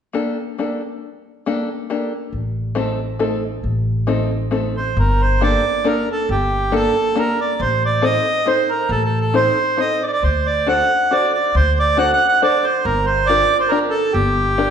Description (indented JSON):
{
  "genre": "musette waltz",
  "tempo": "138 BPM",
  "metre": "3/4",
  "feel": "straight",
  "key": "G minor",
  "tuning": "A4 = 441 Hz",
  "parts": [
    { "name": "open-back banjo", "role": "accompaniment", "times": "0.1-14.7 s", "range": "A3 to C5", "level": "-22 LUFS", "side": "left 2 dB", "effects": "none" },
    { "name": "upright bass", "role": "bass", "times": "2.3-14.7 s", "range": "G1 to D2", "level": "-20 LUFS", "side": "equal", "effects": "none" },
    { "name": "accordion", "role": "melody", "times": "4.8-14.7 s", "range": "G4 to F#5", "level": "-16 LUFS", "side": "right 2 dB", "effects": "none" }
  ],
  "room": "wet recital hall reverb, RT60 1.5 s",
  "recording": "recorded in a church or concert hall, nothing above 10.4 kHz",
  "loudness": "-16 LUFS",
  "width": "side -8 dB against mid",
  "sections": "0.0-5.0 A section; 5.0-14.7 B section",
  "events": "none",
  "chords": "0.0 Gmadd9; 2.3 Adim; 5.0 Gmadd9; 7.6 Adim; 10.2 D7; 12.8 Gm7"
}